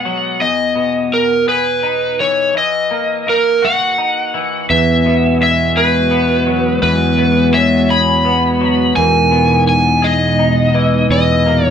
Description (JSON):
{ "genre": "rock", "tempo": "56 BPM (dotted quarters)", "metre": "6/8", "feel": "straight", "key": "E lydian", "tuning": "A4 = 440 Hz", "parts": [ { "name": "overdriven slide guitar", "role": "melody", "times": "0.0-11.7 s", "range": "A#4 to B5", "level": "-15 LUFS", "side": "equal", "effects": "none" }, { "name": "twelve-string electric guitar", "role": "arpeggios", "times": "0.0-11.7 s", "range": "E2 to G#4", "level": "-20 LUFS", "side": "left 3 dB", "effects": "none" }, { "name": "glassy FM pad", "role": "sustained chords", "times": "5.6-11.7 s", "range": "A#2 to F#4", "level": "-20 LUFS", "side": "equal", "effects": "ensemble chorus, built-in reverb" }, { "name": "vibraphone with soft mallets", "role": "arpeggios", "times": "4.7-11.5 s", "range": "A#4 to E5", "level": "-21 LUFS", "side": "right 8 dB", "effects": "none" }, { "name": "growling fingered electric bass", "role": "bass", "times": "4.7-11.7 s", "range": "E2", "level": "-15 LUFS", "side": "equal", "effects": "overdrive" } ], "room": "wet small room reverb, RT60 0.5 s", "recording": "band playing live in one room", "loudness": "-11 LUFS", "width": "side -8 dB against mid", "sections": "0.0-4.7 A section; 4.7-11.7 A section", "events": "none", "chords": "0.4 G#m/E; 2.6 D#m/E; 4.7 Eadd9; 9.0 G#madd9/E; 11.1 D#m/E" }